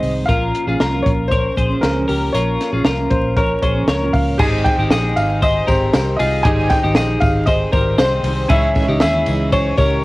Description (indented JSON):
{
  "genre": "jangly indie pop",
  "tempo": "117 BPM",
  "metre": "4/4",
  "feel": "straight",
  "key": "Ab major",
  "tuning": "A4 = 440 Hz",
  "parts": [
    { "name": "clear upright piano", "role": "melody", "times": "0.0-10.0 s", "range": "Bb4 to Ab5", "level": "-20 LUFS", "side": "left 1 dB", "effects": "cassette tape" },
    { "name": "picked steel-string acoustic guitar", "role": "accompaniment", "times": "0.0-10.0 s", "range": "Ab2 to Eb4", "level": "-24 LUFS", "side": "right 2 dB", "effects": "none" },
    { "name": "twelve-string electric guitar", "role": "arpeggios", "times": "0.0-10.0 s", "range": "Eb4 to Db5", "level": "-21 LUFS", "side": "left 2 dB", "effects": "none" },
    { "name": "vintage muted fingered electric bass", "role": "bass", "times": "0.0-10.0 s", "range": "Ab1 to Eb2", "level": "-21 LUFS", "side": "equal", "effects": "none" },
    { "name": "compact cocktail drum kit", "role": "drums", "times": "0.0-9.9 s", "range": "crash cymbal, hi-hat, kick drum, ride cymbal, snare drum", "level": "-19 LUFS", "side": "equal", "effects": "cassette tape" },
    { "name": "warm analog keys", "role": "accompaniment", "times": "4.4-10.0 s", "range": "Db4 to Db5", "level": "-27 LUFS", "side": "right 2 dB", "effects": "chorus" },
    { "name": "tambourine", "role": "percussion", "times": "4.7-9.9 s", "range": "none", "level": "-42 LUFS", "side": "right 4 dB", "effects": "none" }
  ],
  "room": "little or no reverb",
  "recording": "home recording on cassette, vinyl crackle",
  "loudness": "-14 LUFS",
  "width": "side -19 dB against mid",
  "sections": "0.0-4.4 A section; 4.4-10.0 B section",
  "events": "none",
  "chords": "0.3 Bbm; 4.4 Abmaj7; 8.5 Dbmadd9"
}